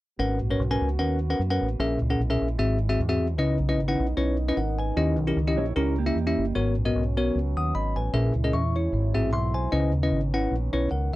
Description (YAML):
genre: uptempo gospel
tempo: 151 BPM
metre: 4/4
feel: swing 55% on 8ths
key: G# minor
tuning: A4 = 441 Hz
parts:
  - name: bell-like tine electric piano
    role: accompaniment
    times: 0.2-11.2 s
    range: G#2 to D#6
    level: -25 LUFS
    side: left 1 dB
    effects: none
  - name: mellow French horn section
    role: sustained chords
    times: 0.2-11.2 s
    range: D#3 to F#4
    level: -36 LUFS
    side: right 4 dB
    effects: stereo widening
  - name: deep dub fingered electric bass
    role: bass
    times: 0.2-11.2 s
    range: G1 to F#2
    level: -27 LUFS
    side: equal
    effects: none
  - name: mellow electric guitar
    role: second line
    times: 5.6-6.5 s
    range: A#3 to C#5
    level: -30 LUFS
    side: right 8 dB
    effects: none
room: little or no reverb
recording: dry, close 1970s-style studio recording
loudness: -23 LUFS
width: side -17 dB against mid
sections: 0.2-6.6 A section; 6.6-11.2 B section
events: tine electric piano fill 9.1-9.7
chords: 0.2 G#m11; 1.8 A#m7b5; 2.6 G#aug7; 3.4 C#m9; 5.0 D#7b9; 6.6 G#m11; 8.1 A#m7b5; 8.9 G#7alt; 9.7 C#m9